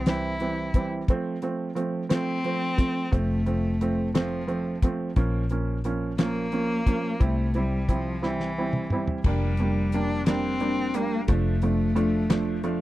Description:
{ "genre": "six-eight pop ballad", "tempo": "59 BPM (dotted quarters)", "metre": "6/8", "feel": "straight", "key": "F major", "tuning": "A4 = 440 Hz", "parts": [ { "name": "rich cello", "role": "melody", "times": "0.0-12.8 s", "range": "E3 to E4", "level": "-29 LUFS", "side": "left 1 dB", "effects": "none" }, { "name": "vintage muted fingered electric bass", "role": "bass", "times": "0.0-12.8 s", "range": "F1 to C2", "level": "-29 LUFS", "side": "left 1 dB", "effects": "none" }, { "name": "felt-muted upright piano", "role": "accompaniment", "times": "0.1-12.8 s", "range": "E3 to E4", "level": "-28 LUFS", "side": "right 3 dB", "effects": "none" }, { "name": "damped 70s drum kit", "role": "drums", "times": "0.1-12.8 s", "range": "crash cymbal, hi-hat, kick drum, snare drum, toms", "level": "-24 LUFS", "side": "left 1 dB", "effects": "none" }, { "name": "fingerpicked plugged-in steel-string acoustic guitar", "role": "arpeggios", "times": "9.2-12.8 s", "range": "F3 to D4", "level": "-35 LUFS", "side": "left 15 dB", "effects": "none" } ], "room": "little or no reverb", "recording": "dry, close 1970s-style studio recording", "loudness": "-23 LUFS", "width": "side -16 dB against mid", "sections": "0.0-9.2 A section; 9.2-12.8 B section", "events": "drum fill 8.2-9.2", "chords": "0.0 C; 1.1 F; 5.2 Bbm; 7.2 C; 9.2 Gm/F; 11.3 Dm/F", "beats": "0.07 | 1.09 2.11 | 3.13 4.14 | 5.16 6.18 | 7.20 8.22 | 9.24 10.26 | 11.28 12.30" }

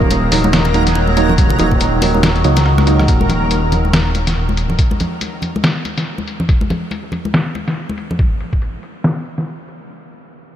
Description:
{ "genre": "deep dubstep", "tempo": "141 BPM", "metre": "4/4", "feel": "swing 58% on 16ths, half-time", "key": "Eb minor", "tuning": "A4 = 440 Hz", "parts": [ { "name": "overtone-sweeping drone", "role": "sustained chords", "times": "0.0-3.1 s", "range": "Eb3 to Gb3", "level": "-22 LUFS", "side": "equal", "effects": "chorus, built-in reverb, phaser" }, { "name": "dark detuned saw bass", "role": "bass", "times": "0.0-4.8 s", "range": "Eb1 to Db2", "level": "-16 LUFS", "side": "equal", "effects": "none" }, { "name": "electronic kick drum", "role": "drums", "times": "0.0-8.6 s", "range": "none", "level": "-15 LUFS", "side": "equal", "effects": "none" }, { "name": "backwards swelling texture", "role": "texture", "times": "0.0-3.1 s", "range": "Bb4", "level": "-27 LUFS", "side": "equal", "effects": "built-in reverb, ensemble chorus" }, { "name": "trip hop sampler-style drum kit", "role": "drums", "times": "0.1-9.8 s", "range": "hi-hat, rim click, snare drum", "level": "-20 LUFS", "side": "left 1 dB", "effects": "low-pass filter on hats, low-pass filter on snare" }, { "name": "congas", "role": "percussion", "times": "0.1-8.2 s", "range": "none", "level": "-22 LUFS", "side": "left 2 dB", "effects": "dub echo" }, { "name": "percussive organ stab", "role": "stabs", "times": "0.3-3.3 s", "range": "Gb3 to Eb4", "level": "-20 LUFS", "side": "right 3 dB", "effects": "wide subtle chorus, dub echo" } ], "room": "moderate huge ambient reverb, RT60 8.8 s", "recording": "dreamy mix soaked in reverb", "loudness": "-13 LUFS", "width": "side -10 dB against mid", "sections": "0.0-3.1 A section; 3.1-9.9 B section", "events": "drop 0.0-3.1; drum fill 2.7-3.1; filter sweep on drum 3.1-9.9; filter sweep on detuned saw bass 3.1-4.8", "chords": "0.0 Ebm; 3.1 N.C.", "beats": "0.10 0.53 0.96 | 1.38 1.81 2.23 2.66 | 3.08 3.51 3.94 4.36 | 4.79 5.21 5.64 6.06 | 6.49 6.91 7.34 7.76 | 8.19 8.62 9.04 9.47" }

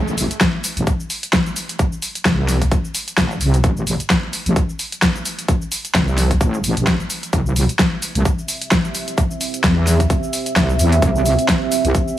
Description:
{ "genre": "bass house", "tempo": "130 BPM", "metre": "4/4", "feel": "swing 57% on 16ths", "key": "A minor", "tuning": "A4 = 440 Hz", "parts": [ { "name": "wobble bass", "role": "bass", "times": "0.0-11.9 s", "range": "A1 to E2", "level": "-17 LUFS", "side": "equal", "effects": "chorus, tube saturation, sidechain pumping" }, { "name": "big-room dance drum kit", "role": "drums", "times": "0.1-12.2 s", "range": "cabasa, hi-hat, snare drum", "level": "-20 LUFS", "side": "equal", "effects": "overdrive" }, { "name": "electronic kick drum", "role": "drums", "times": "0.4-12.1 s", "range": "none", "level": "-19 LUFS", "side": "equal", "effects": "overdrive" }, { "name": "deep dark ambient pad", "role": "sustained chords", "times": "8.7-12.2 s", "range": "C4 to E5", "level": "-22 LUFS", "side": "right 4 dB", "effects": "chorus, built-in reverb, sidechain pumping" } ], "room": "light reverb", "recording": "none", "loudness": "-16 LUFS", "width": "side -13 dB against mid", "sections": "0.0-12.2 A section", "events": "filter sweep on wobble bass 0.0-12.2", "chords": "0.0 Am; 7.3 C", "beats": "0.41 0.87 1.33 | 1.79 2.25 2.72 3.18 | 3.64 4.10 4.56 5.02 | 5.49 5.95 6.41 6.87 | 7.33 7.79 8.25 8.72 | 9.18 9.64 10.10 10.56 | 11.02 11.48 11.95" }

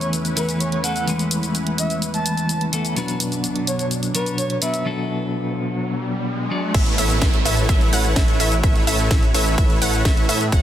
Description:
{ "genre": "EDM, festival progressive house", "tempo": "127 BPM", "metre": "4/4", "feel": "straight", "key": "A major", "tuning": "A4 = 435 Hz", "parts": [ { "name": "breathy flute-like synth lead", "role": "melody", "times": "0.0-4.9 s", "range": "B4 to A5", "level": "-28 LUFS", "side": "right 1 dB", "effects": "chorus, tremolo, digital delay" }, { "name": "clean electric guitar", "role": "accompaniment", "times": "0.0-6.7 s", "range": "B2 to D5", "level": "-23 LUFS", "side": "left 1 dB", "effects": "tremolo, sidechain pumping" }, { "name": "lush unison pad", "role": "sustained chords", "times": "0.0-10.6 s", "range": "B2 to C#5", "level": "-30 LUFS", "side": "right 1 dB", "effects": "chorus, phaser, sidechain pumping" }, { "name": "house drum kit", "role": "drums", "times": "0.0-10.6 s", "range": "crash cymbal, hi-hat, ride cymbal, shaker, snare drum", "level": "-26 LUFS", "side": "equal", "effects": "overdrive" }, { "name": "riser and downlifter", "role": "sound effects", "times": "4.6-10.5 s", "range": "none", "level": "-30 LUFS", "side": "right 2 dB", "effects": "none" }, { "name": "wide unison pluck", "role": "arpeggios", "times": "6.7-10.6 s", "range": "E5 to F#5", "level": "-26 LUFS", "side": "equal", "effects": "sidechain pumping, digital delay" }, { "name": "dense compressed supersaw", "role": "riff", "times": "6.7-10.6 s", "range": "C#4 to F#5", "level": "-24 LUFS", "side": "right 1 dB", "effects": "sidechain pumping, digital delay" }, { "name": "wide detuned saw bass", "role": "bass", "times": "6.7-10.6 s", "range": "F#1 to A2", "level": "-22 LUFS", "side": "equal", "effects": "chorus, sidechain pumping" }, { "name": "electronic kick drum", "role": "drums", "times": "6.7-10.6 s", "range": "none", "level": "-18 LUFS", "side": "equal", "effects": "none" } ], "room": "digital ambience", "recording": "dense, heavily limited modern master", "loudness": "-18 LUFS", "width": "side -11 dB against mid", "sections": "0.0-6.7 A section; 6.7-10.6 B section", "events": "filter sweep on analog synth pad 0.0-6.7; riser 4.6-6.7; drop 6.7-10.6", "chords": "0.0 Esus4; 3.0 Bm; 6.7 Aadd9", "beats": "0.13 0.60 | 1.08 1.55 2.02 2.49 | 2.97 3.44 3.91 4.38 | 4.86 5.33 5.80 6.27 | 6.75 7.22 7.69 8.16 | 8.63 9.11 9.58 10.05 | 10.53" }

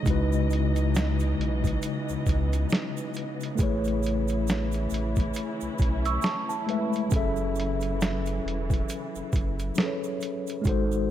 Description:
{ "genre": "lo-fi hip hop", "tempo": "68 BPM", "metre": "4/4", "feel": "swing 60% on 16ths", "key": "unclear", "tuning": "A4 = 440 Hz", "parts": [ { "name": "mellow tine electric piano", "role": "accompaniment", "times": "0.0-11.1 s", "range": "C#3 to E5", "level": "-29 LUFS", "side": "left 2 dB", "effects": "medium stereo tremolo, cassette tape, low-pass filter" }, { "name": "warm symphonic string section", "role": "sustained chords", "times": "0.0-10.6 s", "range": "C#3 to D#5", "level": "-36 LUFS", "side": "equal", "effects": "low-pass filter" }, { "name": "saturated sub bass", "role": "bass", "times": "0.1-11.1 s", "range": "E1 to C#2", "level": "-28 LUFS", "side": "equal", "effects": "none" }, { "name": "lo-fi sampler-style drum kit", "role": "drums", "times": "0.1-10.9 s", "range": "hi-hat, kick drum, snare drum", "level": "-28 LUFS", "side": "right 1 dB", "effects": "overdrive, vintage 12-bit sampler grit" }, { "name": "tube shaker", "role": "percussion", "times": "0.1-11.1 s", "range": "none", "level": "-47 LUFS", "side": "right 9 dB", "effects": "none" }, { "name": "worn celesta", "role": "second line", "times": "6.1-7.1 s", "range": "A5 to E6", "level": "-32 LUFS", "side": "right 5 dB", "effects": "low-pass filter, analog delay" } ], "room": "light reverb", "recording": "none", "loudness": "-24 LUFS", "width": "side -11 dB against mid", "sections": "0.0-11.1 A section", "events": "none", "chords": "0.1 C#m11; 3.6 Amaj9; 7.1 F#m7", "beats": "| 0.06 0.94 1.82 2.71 | 3.59 4.47 5.35 6.24 | 7.12 8.00 8.88 9.77 | 10.65" }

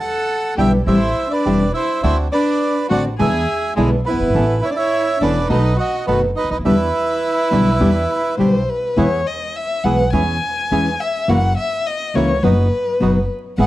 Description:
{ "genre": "tango", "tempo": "104 BPM", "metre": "4/4", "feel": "rubato", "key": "E minor, E major from 9.0 s", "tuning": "A4 = 440 Hz", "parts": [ { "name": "bandoneon", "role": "melody", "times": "0.0-8.4 s", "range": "E4 to A5", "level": "-20 LUFS", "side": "right 3 dB", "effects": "none" }, { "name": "warm violin", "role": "second line", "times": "0.0-13.7 s", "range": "G#3 to G#5", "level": "-22 LUFS", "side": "left 2 dB", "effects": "none" }, { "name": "nylon-string guitar", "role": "accompaniment", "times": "0.6-13.7 s", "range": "B2 to F#4", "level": "-18 LUFS", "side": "left 2 dB", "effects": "none" }, { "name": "bandoneon", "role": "stabs", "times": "0.6-13.7 s", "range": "A3 to A4", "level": "-27 LUFS", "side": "right 5 dB", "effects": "none" }, { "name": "upright bass", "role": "bass", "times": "0.6-13.7 s", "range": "E1 to E2", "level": "-20 LUFS", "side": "equal", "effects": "none" } ], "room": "light reverb, studio reverb", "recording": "dry, close 1970s-style studio recording, vinyl crackle", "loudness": "-15 LUFS", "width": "side -15 dB against mid", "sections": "0.0-9.0 A section; 9.0-13.7 B section", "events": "violin solo 9.0-13.7", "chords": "0.0 Em7; 0.9 Am7; 2.0 D7; 3.2 E7; 4.3 Aadd9; 5.5 B7; 6.6 Em7; 9.0 E; 10.1 C#m/E; 11.3 F#7; 12.4 B/F#", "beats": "0.29 0.87 1.45 | 2.04 2.62 3.19 3.77 | 4.35 4.92 5.50 6.07 | 6.64 7.22 7.80 8.38 | 8.97 9.55 10.13 10.71 | 11.29 11.86 12.43 13.01 | 13.58" }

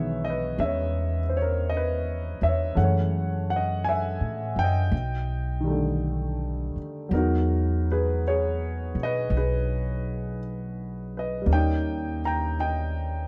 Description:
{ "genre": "jazz ballad", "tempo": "55 BPM", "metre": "4/4", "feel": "swing 68% on 8ths", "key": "unclear", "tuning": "A4 = 440 Hz", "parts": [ { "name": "warm concert grand piano", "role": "accompaniment", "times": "0.0-13.3 s", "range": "D3 to A#5", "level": "-30 LUFS", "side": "equal", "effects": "none" }, { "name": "upright bass", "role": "bass", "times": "0.0-13.3 s", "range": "B1 to B2", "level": "-29 LUFS", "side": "equal", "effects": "none" } ], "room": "little or no reverb", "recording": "dark, warm production", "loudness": "-26 LUFS", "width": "mono", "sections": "0.0-13.3 A section", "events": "none", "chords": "0.0 C#m9; 2.8 F#m7; 4.9 B7alt; 7.1 Emaj9; 11.5 D#7", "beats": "0.59 1.67 | 2.75 3.83 4.92 6.01 | 7.12 8.21 9.31 10.39 | 11.47 12.54" }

